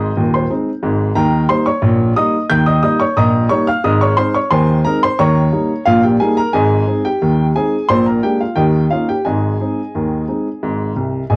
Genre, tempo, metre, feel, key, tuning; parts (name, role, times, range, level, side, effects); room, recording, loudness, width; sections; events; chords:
ragtime piano; 89 BPM; 2/4; straight; Ab major; A4 = 440 Hz
clear upright piano; solo; 0.0-11.4 s; Eb1 to G6; -15 LUFS; equal
wet small room reverb, RT60 0.5 s; home recording on cassette; -15 LUFS; mono
0.0-11.4 A section
upright piano fill 11.0-11.4
0.0 Ab; 1.2 Eb7; 3.9 Ab; 5.2 Eb7; 6.5 Ab; 7.9 Bb7; 8.6 Eb7; 9.3 Ab